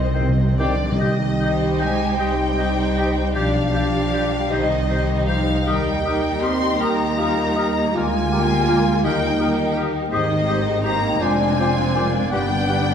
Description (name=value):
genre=classical, slow romantic movement for symphony orchestra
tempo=45-56 BPM (dotted quarters)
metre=6/8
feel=rubato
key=C minor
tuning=A4 = 438 Hz
part: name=warm symphonic violin section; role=melody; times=0.0-12.9 s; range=D5 to C6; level=-26 LUFS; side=left 4 dB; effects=none
part: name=warm studio violin section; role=second line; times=0.0-12.9 s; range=D4 to D5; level=-30 LUFS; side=left 2 dB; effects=none
part: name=rich studio viola section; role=accompaniment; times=0.0-12.9 s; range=G3 to F4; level=-28 LUFS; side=right 2 dB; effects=none
part: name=concert harp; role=arpeggios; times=0.0-12.9 s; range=F2 to Eb6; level=-29 LUFS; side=left 5 dB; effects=none
part: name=mellow tuba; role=bass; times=0.0-0.8 s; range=C2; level=-32 LUFS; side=right 3 dB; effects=none
part: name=warm symphonic cello section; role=bass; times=0.0-12.9 s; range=C3 to C4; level=-26 LUFS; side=right 3 dB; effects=none
part: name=warm symphonic double bass section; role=bass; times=0.0-12.9 s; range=F1 to Eb2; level=-25 LUFS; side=right 1 dB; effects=none
part: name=timpani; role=percussion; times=0.0-1.0 s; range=C3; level=-23 LUFS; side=equal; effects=none
part: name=clear clarinet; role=second line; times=0.1-12.9 s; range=C4 to G4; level=-32 LUFS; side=equal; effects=none
part: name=mellow small flute group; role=second line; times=0.1-12.8 s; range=G5 to G6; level=-32 LUFS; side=left 3 dB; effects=none
part: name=warm oboe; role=second line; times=0.1-12.8 s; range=Bb4 to Eb5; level=-33 LUFS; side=equal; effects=none
part: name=mellow bassoon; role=accompaniment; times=0.2-12.9 s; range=Eb3 to G4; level=-27 LUFS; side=right 2 dB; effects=none
part: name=mellow French horn section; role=sustained chords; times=0.6-12.9 s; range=G3 to F4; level=-27 LUFS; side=left 3 dB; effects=none
part: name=bright trumpet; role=stabs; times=0.6-0.7 s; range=G4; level=-34 LUFS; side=equal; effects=none
room=wet concert hall reverb, RT60 2.4 s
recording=vinyl crackle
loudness=-17 LUFS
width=side -8 dB against mid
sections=0.0-1.0 A section; 1.0-12.9 A section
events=timpani fill 0.0-1.0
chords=0.0 Cm; 3.4 G/B; 4.5 Cm; 5.7 Eb; 7.9 Bb/D; 9.0 Eb; 10.1 Abmaj7; 11.2 Dm7b5/F; 12.3 G